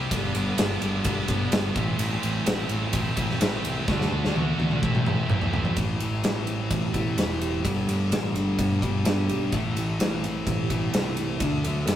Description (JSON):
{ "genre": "quiet-loud alternative rock", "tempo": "128 BPM", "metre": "4/4", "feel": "straight", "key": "A dorian", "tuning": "A4 = 436 Hz", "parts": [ { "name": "high-gain distorted guitar", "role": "riff", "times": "0.0-5.8 s", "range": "G2 to F#4", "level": "-31 LUFS", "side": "right 4 dB", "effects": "distortion" }, { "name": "scooped high-gain guitar", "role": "riff", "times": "0.0-12.0 s", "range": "G2 to F#4", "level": "-30 LUFS", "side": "left 2 dB", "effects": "distortion" }, { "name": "growling picked electric bass", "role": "bass", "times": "0.0-12.0 s", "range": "E1 to F#2", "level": "-29 LUFS", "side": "right 1 dB", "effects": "overdrive" }, { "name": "big rock drum kit", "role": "drums", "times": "0.1-12.0 s", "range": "kick drum, ride cymbal, snare drum, toms", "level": "-26 LUFS", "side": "equal", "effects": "none" }, { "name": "electric guitar through a small old amp", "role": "arpeggios", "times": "5.8-12.0 s", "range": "A2 to G4", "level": "-32 LUFS", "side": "right 1 dB", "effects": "phaser" } ], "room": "light reverb", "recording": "rough rehearsal-room recording", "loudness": "-23 LUFS", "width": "side -11 dB against mid", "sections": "0.0-5.8 A section; 5.8-12.0 B section", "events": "drum fill 3.9-5.8", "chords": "0.1 G; 1.8 Am; 3.9 D; 4.8 Am; 5.8 Am7; 7.6 Gsus2; 9.5 Am7; 11.4 D" }